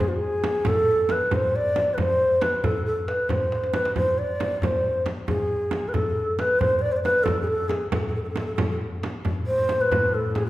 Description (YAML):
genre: Persian modal ensemble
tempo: 91 BPM (dotted quarters)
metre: 6/8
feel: straight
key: A avaz esfahan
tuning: A4 = 439 Hz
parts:
  - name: breathy mellow long shakuhachi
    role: melody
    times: 0.0-10.5 s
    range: F4+45c to D5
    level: -22 LUFS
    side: equal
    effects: none
  - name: tombak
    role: percussion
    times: 0.0-10.5 s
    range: none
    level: -29 LUFS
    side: left 1 dB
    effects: none
  - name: frame drum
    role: percussion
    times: 0.4-10.5 s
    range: none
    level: -30 LUFS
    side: right 2 dB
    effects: none
  - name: rich double bass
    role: drone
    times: 9.2-10.5 s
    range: A2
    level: -30 LUFS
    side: left 1 dB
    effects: none
room: wet recital hall reverb, RT60 1.8 s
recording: heard from further back in the room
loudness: -21 LUFS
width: side -16 dB against mid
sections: 0.0-9.2 A section; 9.2-10.5 B section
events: drum fill 3.5-4.0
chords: none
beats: | 0.01 0.67 | 1.33 1.99 | 2.65 3.31 | 3.97 4.62 | 5.29 5.95 | 6.61 7.27 | 7.93 8.59 | 9.25 9.91